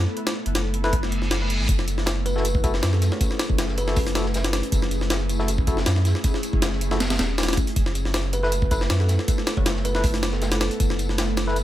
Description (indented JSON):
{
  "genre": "drum and bass, jungle",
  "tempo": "158 BPM",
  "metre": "4/4",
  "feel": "straight",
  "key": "F# minor",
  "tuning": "A4 = 436 Hz",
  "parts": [
    { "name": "soft dub sub bass", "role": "bass", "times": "0.0-11.6 s", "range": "E1 to F#2", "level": "-24 LUFS", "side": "equal", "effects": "none" },
    { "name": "jungle sampler-style drum kit", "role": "drums", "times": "0.2-11.6 s", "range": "hi-hat, kick drum, snare drum", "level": "-24 LUFS", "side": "equal", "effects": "none" },
    { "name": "tine electric piano", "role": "stabs", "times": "0.8-11.6 s", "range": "E4 to B4", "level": "-31 LUFS", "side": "left 2 dB", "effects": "medium tremolo, dub echo" },
    { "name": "reverse cymbal", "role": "sound effects", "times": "1.1-1.7 s", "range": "none", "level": "-31 LUFS", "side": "right 1 dB", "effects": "none" },
    { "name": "crunchy breakbeat drum kit", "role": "drums", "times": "1.7-11.6 s", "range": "hi-hat, snare drum, tambourine", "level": "-35 LUFS", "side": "left 2 dB", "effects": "high-pass filter on hats, high-pass filter on snare, high-pass filter on perc, high-pass filter on room" },
    { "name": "kalimba", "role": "melody", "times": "2.3-4.3, 8.3-10.5 s", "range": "A4 to C#5", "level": "-32 LUFS", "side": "equal", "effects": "dub echo" }
  ],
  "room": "small room reverb",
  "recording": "none",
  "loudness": "-20 LUFS",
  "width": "side -13 dB against mid",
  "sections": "0.0-11.6 A section",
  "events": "reverse cymbal 1.1-1.7",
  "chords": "0.0 Esus4/F#; 1.7 F#m7; 7.8 Esus4/F#",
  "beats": "| 0.17 0.55 0.93 1.31 | 1.69 2.07 2.45 2.83 | 3.21 3.59 3.96 4.34 | 4.72 5.11 5.48 5.86 | 6.24 6.62 7.00 7.38 | 7.76 8.14 8.52 8.90 | 9.28 9.66 10.04 10.42 | 10.80 11.18 11.56"
}